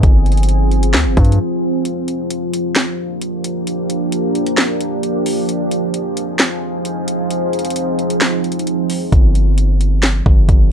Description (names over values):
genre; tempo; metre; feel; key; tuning
hip hop, trap; 132 BPM; 4/4; half-time; G phrygian; A4 = 440 Hz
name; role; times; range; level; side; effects
deep dark ambient pad; sustained chords; 0.0-10.7 s; F3 to Ab4; -18 LUFS; right 1 dB; chorus, built-in reverb
hard-hitting 808-style bass; bass; 0.0-1.4, 9.1-10.7 s; G1 to G2; -13 LUFS; equal; none
trap drum kit; drums; 0.0-10.6 s; handclaps, hi-hat, kick drum, snare drum; -15 LUFS; equal; vintage 12-bit sampler grit
room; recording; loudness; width
light reverb; none; -14 LUFS; side -8 dB against mid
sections
0.0-10.7 A section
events
break 1.4-1.9, 1.9-9.1; kick muted 7.3-9.1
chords
0.0 Fm/G; 1.9 Gm7; 5.5 Fm7; 9.1 Gm7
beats
| 0.03 0.49 0.94 1.40 | 1.85 2.31 2.76 3.21 | 3.67 4.12 4.58 5.03 | 5.49 5.94 6.40 6.85 | 7.31 7.76 8.21 8.67 | 9.12 9.58 10.03 10.49